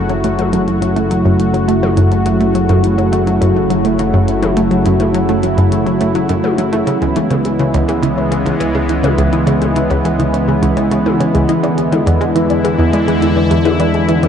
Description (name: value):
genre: ambient, sequencer-driven space music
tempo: 104 BPM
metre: 4/4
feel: straight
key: F# minor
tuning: A4 = 440 Hz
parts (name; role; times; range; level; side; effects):
- sweeping resonant pad; sustained chords; 0.0-14.3 s; C#3 to F#4; -14 LUFS; equal; chorus
- soft round pluck; arpeggios; 0.0-14.3 s; E4 to D5; -23 LUFS; right 1 dB; none
- fat analog bass; bass; 0.0-14.3 s; F#1 to E2; -21 LUFS; equal; none
- analog pluck; riff; 0.1-14.3 s; C#2 to A3; -17 LUFS; equal; chorus, ping-pong delay
- minimal click drum kit; percussion; 0.1-14.3 s; hi-hat, toms; -27 LUFS; left 5 dB; ping-pong delay
room: wet huge ambient reverb, RT60 7.5 s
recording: dark, warm production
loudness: -11 LUFS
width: side -8 dB against mid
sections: 0.0-14.3 A section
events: none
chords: 0.0 F#m7; 6.9 C#m7; 11.5 E7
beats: 0.53 1.11 1.68 | 2.26 2.84 3.41 3.99 | 4.57 5.14 5.72 6.30 | 6.88 7.45 8.03 8.61 | 9.18 9.76 10.34 10.91 | 11.49 12.07 12.64 13.22 | 13.80